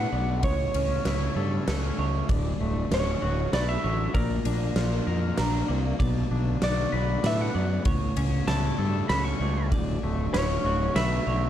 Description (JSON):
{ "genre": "post-rock", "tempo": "97 BPM", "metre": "3/4", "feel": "straight", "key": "D major", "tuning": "A4 = 439 Hz", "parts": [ { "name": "lightly driven lead guitar", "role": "melody", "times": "0.0-11.5 s", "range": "Bb4 to C#6", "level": "-30 LUFS", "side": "equal", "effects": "slapback echo" }, { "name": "glassy FM pad", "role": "sustained chords", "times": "0.1-11.5 s", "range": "C#3 to F#4", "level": "-36 LUFS", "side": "equal", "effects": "none" }, { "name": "electric guitar through a small old amp", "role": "arpeggios", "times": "0.0-11.5 s", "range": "A4 to D5", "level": "-38 LUFS", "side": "right 5 dB", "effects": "lush chorus, slapback echo" }, { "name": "twangy electric guitar", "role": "arpeggios", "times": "0.0-11.5 s", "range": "D2 to B4", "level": "-33 LUFS", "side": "left 3 dB", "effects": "analog chorus, slapback echo" }, { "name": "fuzz fingered electric bass", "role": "bass", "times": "0.0-11.5 s", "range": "D1 to A2", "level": "-27 LUFS", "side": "equal", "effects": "overdrive" }, { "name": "huge arena drum kit", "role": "drums", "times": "0.4-11.1 s", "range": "kick drum, ride cymbal, snare drum", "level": "-30 LUFS", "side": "equal", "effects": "none" } ], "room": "small room ambience", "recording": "dark, warm production", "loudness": "-23 LUFS", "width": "side -11 dB against mid", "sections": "0.0-11.5 A section", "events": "none", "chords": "0.4 A7/C#; 2.3 Dmaj7; 4.2 Bb; 6.0 Bm7; 7.9 A7/C#; 9.7 Dmaj7", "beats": "| 0.43 1.05 1.67 | 2.29 2.91 3.53 | 4.15 4.77 5.39 | 6.01 6.63 7.25 | 7.87 8.49 9.11 | 9.73 10.35 10.97" }